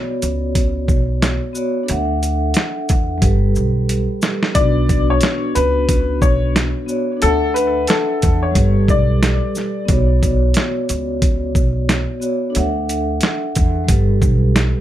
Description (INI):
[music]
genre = hip hop, boom-bap hip-hop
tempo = 90 BPM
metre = 4/4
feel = swing 60% on 16ths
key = B minor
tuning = A4 = 441 Hz
[part]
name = vibraphone with soft mallets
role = accompaniment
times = 0.0-14.8 s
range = G3 to F#5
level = -21 LUFS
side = equal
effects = cassette tape, high-pass filter, low-pass filter
[part]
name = upright bass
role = bass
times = 0.2-14.7 s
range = G1 to E2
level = -19 LUFS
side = equal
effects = none
[part]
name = boom bap sampler-style drum kit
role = drums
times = 0.2-14.7 s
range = hi-hat, kick drum, shaker, snare drum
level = -17 LUFS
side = equal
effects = none
[part]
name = warm upright piano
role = melody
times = 4.5-9.9 s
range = A4 to D5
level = -20 LUFS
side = left 4 dB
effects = high-pass filter, low-pass filter, ping-pong delay
[sound]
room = light reverb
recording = none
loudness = -15 LUFS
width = side -12 dB against mid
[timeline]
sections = 0.0-4.6 A section; 4.6-14.8 A section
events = drum fill 3.2-4.6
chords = 0.0 Bmadd9; 1.9 Dadd9; 3.2 Gadd9; 4.6 Bmadd9; 7.2 Dadd9; 8.6 Gadd9; 9.9 Bmadd9; 12.6 Dadd9; 13.9 Gadd9